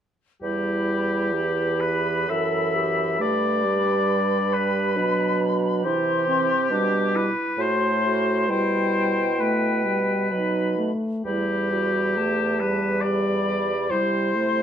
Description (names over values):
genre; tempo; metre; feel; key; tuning
classical, slow romantic movement for wind quintet; 67 BPM; 3/4; uneven beats, rubato; E minor; A4 = 441 Hz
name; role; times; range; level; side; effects
silver concert flute; melody; 0.4-14.6 s; G5 to D6; -31 LUFS; left 4 dB; none
clear oboe; second line; 0.4-14.6 s; G4 to E5; -25 LUFS; left 4 dB; none
clear clarinet; accompaniment; 0.4-14.6 s; C4 to A4; -29 LUFS; right 4 dB; none
mellow French horn; accompaniment; 0.4-14.6 s; E3 to A3; -28 LUFS; left 1 dB; none
warm bassoon; bass; 0.4-14.6 s; E2 to C3; -26 LUFS; right 3 dB; none
room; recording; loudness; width
moderate stone room reverb, RT60 1.1 s; none; -20 LUFS; side -8 dB against mid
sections
0.4-14.6 A section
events
none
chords
0.4 Em; 3.2 G; 5.8 Cmaj7; 7.6 F#dim/A; 8.5 Em/B; 10.3 B; 11.3 Em; 13.9 C